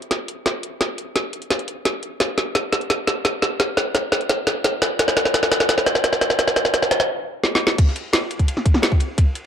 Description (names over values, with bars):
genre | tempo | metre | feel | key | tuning
drum and bass | 172 BPM | 4/4 | straight | none | none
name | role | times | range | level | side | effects
drum and bass drum kit | drums | 0.0-9.4 s | crash cymbal, hi-hat, snare drum | -18 LUFS | equal | none
electronic kick drum | drums | 0.1-9.2 s | none | -19 LUFS | equal | high-pass filter on kick, high-pass filter on room
crunchy breakbeat drum kit | drums | 7.8-9.4 s | ride cymbal, snare drum | -33 LUFS | equal | high-pass filter on cymbals, high-pass filter on snare, high-pass filter on room
room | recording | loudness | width
wet plate reverb, RT60 1.2 s | dark, warm production | -18 LUFS | side -8 dB against mid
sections
0.0-7.8 A section; 7.8-9.5 B section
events
build-up 0.0-7.8; drum fill 0.0-7.1, 7.4-7.8; stop 7.1-7.8; drop 7.8-9.5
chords
none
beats
0.11 0.46 | 0.81 1.16 1.50 1.85 | 2.20 2.55 2.90 3.25 | 3.60 3.95 4.29 4.64 | 4.99 5.34 5.69 6.04 | 6.39 6.74 7.09 7.43 | 7.78 8.13 8.48 8.83 | 9.18